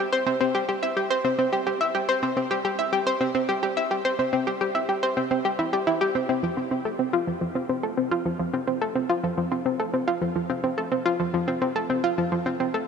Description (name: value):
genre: ambient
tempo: 107 BPM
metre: 4/4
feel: straight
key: C major, F major from 6.4 s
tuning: A4 = 440 Hz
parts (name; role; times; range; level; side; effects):
- analog pluck; solo; 0.0-12.8 s; F3 to E5; -23 LUFS; equal; chorus, vintage 12-bit sampler grit, ping-pong delay
room: wet huge ambient reverb, RT60 8.1 s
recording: cassette tape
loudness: -23 LUFS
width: side -6 dB against mid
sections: 0.0-6.4 A section; 6.4-12.9 B section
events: none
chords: none